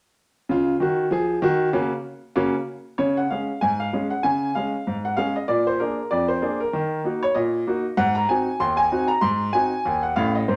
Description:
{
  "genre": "ragtime piano",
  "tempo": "96 BPM",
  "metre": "2/4",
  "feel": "swing 57% on 16ths",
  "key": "Db major",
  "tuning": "A4 = 440 Hz",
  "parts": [
    { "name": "clear upright piano", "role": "solo", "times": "0.5-10.6 s", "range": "A1 to C6", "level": "-23 LUFS", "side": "equal", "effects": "none" }
  ],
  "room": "wet studio reverb, RT60 0.7 s",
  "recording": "none",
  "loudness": "-23 LUFS",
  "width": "mono",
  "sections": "0.5-3.0 A section; 3.0-10.6 B section",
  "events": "none",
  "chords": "0.5 Db; 1.7 Gb/Db; 3.0 Db5; 5.5 Bb7; 6.7 Ebm; 8.0 Ab7"
}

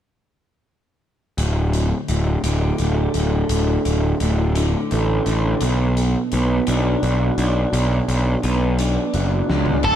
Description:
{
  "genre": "quiet-loud alternative rock",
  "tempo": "57 BPM (dotted quarters)",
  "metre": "6/8",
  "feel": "straight",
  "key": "D major",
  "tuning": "A4 = 439 Hz",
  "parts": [
    { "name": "electric guitar through a small old amp", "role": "arpeggios", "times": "1.4-10.0 s", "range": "D2 to F#4", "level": "-23 LUFS", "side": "right 1 dB", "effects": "tape echo, slapback echo" },
    { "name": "fuzz picked electric bass", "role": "bass", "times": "1.4-10.0 s", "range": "D1 to C#2", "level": "-19 LUFS", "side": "equal", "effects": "overdrive" },
    { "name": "big rock drum kit", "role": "drums", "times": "1.4-10.0 s", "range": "crash cymbal, hi-hat, kick drum, snare drum, toms", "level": "-29 LUFS", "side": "equal", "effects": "none" },
    { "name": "octave-fuzz lead guitar", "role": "melody", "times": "9.8-10.0 s", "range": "A4", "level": "-15 LUFS", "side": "right 1 dB", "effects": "distortion" }
  ],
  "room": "moderate lush hall reverb, RT60 2.4 s",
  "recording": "big arena sound",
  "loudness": "-17 LUFS",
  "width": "side -10 dB against mid",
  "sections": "1.4-9.9 A section",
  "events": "drum fill 9.5-9.9",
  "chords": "1.4 D5; 5.6 Bm"
}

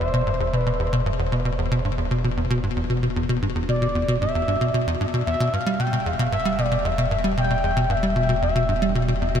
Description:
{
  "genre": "ambient, sequencer-driven space music",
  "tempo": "114 BPM",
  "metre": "4/4",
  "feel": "straight",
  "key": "E phrygian",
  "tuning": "A4 = 439 Hz",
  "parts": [
    { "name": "expressive synth lead", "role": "melody", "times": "0.0-9.2 s", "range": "B4 to G5", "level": "-26 LUFS", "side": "equal", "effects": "chorus, ping-pong delay" },
    { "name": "tight sequencer bass", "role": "riff", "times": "0.0-9.4 s", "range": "E2 to G3", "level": "-22 LUFS", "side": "equal", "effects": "wide subtle chorus, ping-pong delay" },
    { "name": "round analog bass", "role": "bass", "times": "0.0-9.4 s", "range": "E1", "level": "-30 LUFS", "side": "equal", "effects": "none" }
  ],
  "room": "moderate huge ambient reverb, RT60 7.4 s",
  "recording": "dreamy mix soaked in reverb",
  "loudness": "-20 LUFS",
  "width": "side -8 dB against mid",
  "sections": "0.0-9.4 A section",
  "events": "none",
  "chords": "0.0 Em"
}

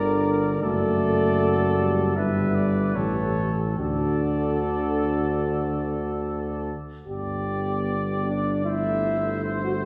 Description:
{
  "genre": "classical, brass quintet",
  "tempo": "71-78 BPM",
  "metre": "4/4",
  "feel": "rubato",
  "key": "D major",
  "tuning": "A4 = 439 Hz",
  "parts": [
    { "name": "clear cornet", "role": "melody", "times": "0.0-9.9 s", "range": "C5 to E5", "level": "-34 LUFS", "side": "equal", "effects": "none" },
    { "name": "warm trumpet", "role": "second line", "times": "0.0-9.9 s", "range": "A4 to D5", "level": "-34 LUFS", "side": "equal", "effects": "none" },
    { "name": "dark euphonium", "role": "accompaniment", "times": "0.0-9.9 s", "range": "D3 to B3", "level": "-30 LUFS", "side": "equal", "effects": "none" },
    { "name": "warm French horn", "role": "accompaniment", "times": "0.0-9.9 s", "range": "D4 to Bb4", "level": "-31 LUFS", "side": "equal", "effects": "none" },
    { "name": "clear bass trombone", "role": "bass", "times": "0.0-9.9 s", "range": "F#1 to D2", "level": "-29 LUFS", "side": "equal", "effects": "none" }
  ],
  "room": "wet concert hall reverb, RT60 2.1 s",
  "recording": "heard from further back in the room",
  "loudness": "-24 LUFS",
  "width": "mono",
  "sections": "0.0-7.1 A section; 7.1-9.9 B section",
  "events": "none",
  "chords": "0.0 Gm; 0.6 D/F#; 2.2 Em/G; 3.0 A7; 3.8 D; 7.1 G; 8.7 Am7/G"
}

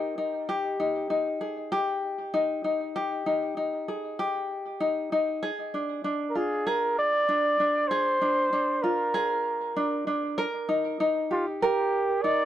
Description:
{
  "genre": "folktronica",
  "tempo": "97 BPM",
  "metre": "4/4",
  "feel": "straight",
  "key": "unclear",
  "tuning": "A4 = 441 Hz",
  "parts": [
    { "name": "mellow flugelhorn", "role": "melody", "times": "0.0-0.1, 6.3-12.5 s", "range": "F4 to D5", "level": "-25 LUFS", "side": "equal", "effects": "tape echo" },
    { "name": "tenor ukulele", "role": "arpeggios", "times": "0.0-12.5 s", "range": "D4 to Bb4", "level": "-27 LUFS", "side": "left 1 dB", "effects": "tape echo" }
  ],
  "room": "light reverb",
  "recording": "dry, close 1970s-style studio recording",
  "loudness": "-25 LUFS",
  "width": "side -12 dB against mid",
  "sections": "0.0-12.5 A section",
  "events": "none",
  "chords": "0.5 Ab5; 5.4 Bb7; 10.4 Eb"
}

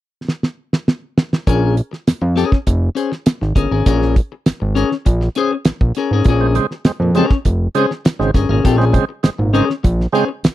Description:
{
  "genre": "funk",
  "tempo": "100 BPM",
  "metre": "4/4",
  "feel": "straight",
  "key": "Bb minor",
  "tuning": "A4 = 440 Hz",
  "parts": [
    { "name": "damped 70s drum kit", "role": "drums", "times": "0.3-10.5 s", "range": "hi-hat, kick drum, snare drum", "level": "-14 LUFS", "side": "right 1 dB", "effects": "none" },
    { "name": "clean electric guitar", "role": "accompaniment", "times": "1.5-10.3 s", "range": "Db4 to C5", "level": "-18 LUFS", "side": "left 6 dB", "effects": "warbly pitch drift" },
    { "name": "fat analog bass", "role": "bass", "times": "1.5-10.5 s", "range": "F1 to F2", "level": "-16 LUFS", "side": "equal", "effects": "none" },
    { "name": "overdriven tonewheel organ", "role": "stabs", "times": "6.3-10.2 s", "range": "Bb2 to C4", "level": "-18 LUFS", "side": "right 5 dB", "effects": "slow rotary speaker" }
  ],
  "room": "little or no reverb",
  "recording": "dry, close 1970s-style studio recording",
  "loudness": "-14 LUFS",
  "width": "side -14 dB against mid",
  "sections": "0.0-1.5 A section; 1.5-10.5 B section",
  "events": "drum fill 0.3-1.5",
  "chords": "0.0 N.C.; 1.5 Bbm7"
}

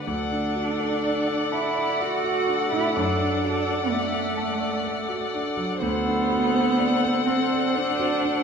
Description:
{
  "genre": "classical, slow romantic movement for piano quintet",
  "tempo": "62 BPM",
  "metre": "3/4",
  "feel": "rubato",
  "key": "unclear",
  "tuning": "A4 = 440 Hz",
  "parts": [
    { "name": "muted violin", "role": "melody", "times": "0.0-8.4 s", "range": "F#5", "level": "-29 LUFS", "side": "left 9 dB", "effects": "none" },
    { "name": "muted violin", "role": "second line", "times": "0.0-8.4 s", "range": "C5 to D5", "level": "-32 LUFS", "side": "left 4 dB", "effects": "none" },
    { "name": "muted viola", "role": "accompaniment", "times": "0.0-8.4 s", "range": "A4", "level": "-30 LUFS", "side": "right 2 dB", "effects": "none" },
    { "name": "warm concert grand piano", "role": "accompaniment", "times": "0.0-8.4 s", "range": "D2 to C6", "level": "-29 LUFS", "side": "equal", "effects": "none" },
    { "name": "muted cello", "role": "second line", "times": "0.1-8.4 s", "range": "A3 to F#4", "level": "-25 LUFS", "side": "right 3 dB", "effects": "none" }
  ],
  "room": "wet recital hall reverb, RT60 1.7 s",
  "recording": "recorded in a church or concert hall, faint mains hum",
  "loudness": "-22 LUFS",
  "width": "side -6 dB against mid",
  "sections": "0.0-8.4 A section",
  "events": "none",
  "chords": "0.1 D; 3.0 D/F#; 5.8 D7"
}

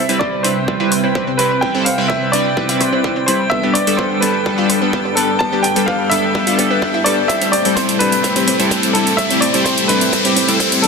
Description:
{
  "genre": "progressive house",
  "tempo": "127 BPM",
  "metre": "4/4",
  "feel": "straight",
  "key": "C major",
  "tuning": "A4 = 441 Hz",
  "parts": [
    { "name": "clear grand piano", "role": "melody", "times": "0.0-10.9 s", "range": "A4 to A5", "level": "-19 LUFS", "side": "equal", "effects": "low-pass filter, tape echo" },
    { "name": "lush unison pad", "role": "sustained chords", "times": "0.0-10.9 s", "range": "C3 to E5", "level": "-24 LUFS", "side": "equal", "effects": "chorus, phaser, sidechain pumping" },
    { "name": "analog pluck", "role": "arpeggios", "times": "0.0-10.9 s", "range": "B3 to C5", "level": "-23 LUFS", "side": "right 2 dB", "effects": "chorus, sidechain pumping, ping-pong delay" },
    { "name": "riser", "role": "sound effects", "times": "0.0-10.9 s", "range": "none", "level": "-23 LUFS", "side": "left 2 dB", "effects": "none" },
    { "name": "drifting glass-harmonics texture", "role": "texture", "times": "0.5-10.9 s", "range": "G5", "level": "-26 LUFS", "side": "left 1 dB", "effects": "chorus, built-in reverb, sidechain pumping" },
    { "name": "chorused polysynth", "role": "stabs", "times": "0.1-10.9 s", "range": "G3 to B4", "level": "-17 LUFS", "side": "left 1 dB", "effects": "sidechain pumping, ping-pong delay" },
    { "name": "electronic hi-hat", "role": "drums", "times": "0.1-10.9 s", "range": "none", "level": "-20 LUFS", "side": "right 2 dB", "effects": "none" },
    { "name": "electronic kick drum", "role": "drums", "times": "0.2-10.7 s", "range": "none", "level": "-25 LUFS", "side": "equal", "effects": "high-pass filter on kick, high-pass filter on room" }
  ],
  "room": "moderate lush hall reverb, RT60 1.8 s",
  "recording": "dense, heavily limited modern master",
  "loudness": "-13 LUFS",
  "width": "side -4 dB against mid",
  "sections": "0.0-10.9 A section",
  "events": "build-up 0.0-10.9; riser 0.0-10.9; filter sweep on analog synth pad 0.0-10.9; drum fill 7.3-10.9",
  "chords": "0.0 Cmaj7; 3.5 Gadd9; 7.3 Am7"
}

